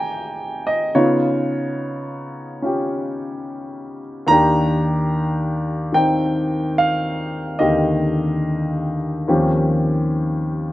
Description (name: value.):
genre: solo jazz.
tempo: 72 BPM.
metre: 4/4.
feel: swing 68% on 8ths, rubato.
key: Eb major.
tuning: A4 = 440 Hz.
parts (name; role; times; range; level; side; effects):
warm grand piano; solo; 0.0-10.7 s; Eb2 to Bb5; -18 LUFS; equal; none.
room: light reverb.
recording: recorded outdoors, with no room sound.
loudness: -17 LUFS.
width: side -16 dB against mid.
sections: 0.0-10.7 A section.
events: none.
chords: 0.0 Cm7; 0.9 Db9; 4.3 Ebmaj7; 9.3 Eb13.